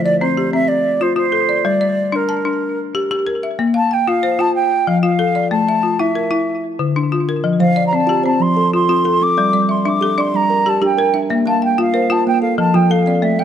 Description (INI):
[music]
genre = southern african traditional, mbira-style interlocking cycle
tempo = 124 BPM (dotted quarters)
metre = 12/8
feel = straight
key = F major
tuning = A4 = 441 Hz
[part]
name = mellow silver concert flute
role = melody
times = 0.0-13.4 s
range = Bb4 to D6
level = -17 LUFS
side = right 1 dB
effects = plate reverb, tape echo
[part]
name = folk marimba with hard mallets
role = arpeggios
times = 0.0-13.4 s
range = D3 to A5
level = -17 LUFS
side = left 4 dB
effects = plate reverb, tape echo
[part]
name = kalimba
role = arpeggios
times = 0.0, 7.6-13.4 s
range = F3 to G5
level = -19 LUFS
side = right 4 dB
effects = plate reverb
[sound]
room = moderate studio reverb, RT60 0.6 s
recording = dark, warm production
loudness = -14 LUFS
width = side -9 dB against mid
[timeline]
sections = 0.0-13.4 A section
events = none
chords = 0.0 F; 1.7 Gm; 3.6 Bb5; 4.6 F; 5.5 A5; 6.5 Dm; 7.5 F; 9.4 Gm; 11.3 Bb; 12.3 F